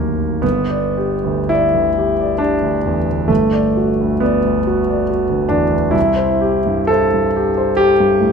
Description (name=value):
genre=classical, impressionist solo piano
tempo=53-72 BPM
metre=3/4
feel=rubato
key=G major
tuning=A4 = 440 Hz
part: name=clear grand piano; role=solo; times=0.0-8.3 s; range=G1 to D5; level=-14 LUFS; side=equal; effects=none
room=wet stone room reverb, RT60 1.2 s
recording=none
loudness=-14 LUFS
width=side -6 dB against mid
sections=0.4-8.3 A section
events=none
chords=0.4 G6; 3.3 Em11/G; 6.0 C6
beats=| 0.43 1.50 2.41 | 3.30 4.22 5.10 | 5.96 6.93 7.79